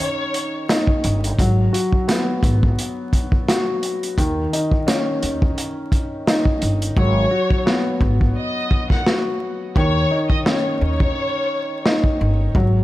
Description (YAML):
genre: hip hop, boom-bap hip-hop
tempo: 86 BPM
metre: 4/4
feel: swing 56% on 16ths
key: unclear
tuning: A4 = 441 Hz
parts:
  - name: warm studio violin section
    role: melody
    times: 0.0-0.9, 7.0-12.0 s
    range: C#5 to F#5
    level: -24 LUFS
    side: left 1 dB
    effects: high-pass filter, low-pass filter, ping-pong delay
  - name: dark grand piano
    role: accompaniment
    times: 0.0-12.8 s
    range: D#3 to F#4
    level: -22 LUFS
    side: left 1 dB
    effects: cassette tape, high-pass filter, low-pass filter
  - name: vintage drum kit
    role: drums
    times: 0.0-12.7 s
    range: hi-hat, kick drum, snare drum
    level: -20 LUFS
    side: equal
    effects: none
  - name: upright bass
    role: bass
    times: 1.0-12.8 s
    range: G1 to D#2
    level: -19 LUFS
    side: equal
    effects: none
room: small room ambience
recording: vinyl crackle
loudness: -17 LUFS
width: side -16 dB against mid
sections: 0.0-12.8 A section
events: hi-hats muted 7.0-12.8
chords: 0.0 D#7; 1.4 G#m7; 4.2 D#7(no3); 7.0 G#m7; 9.8 D#7(no3)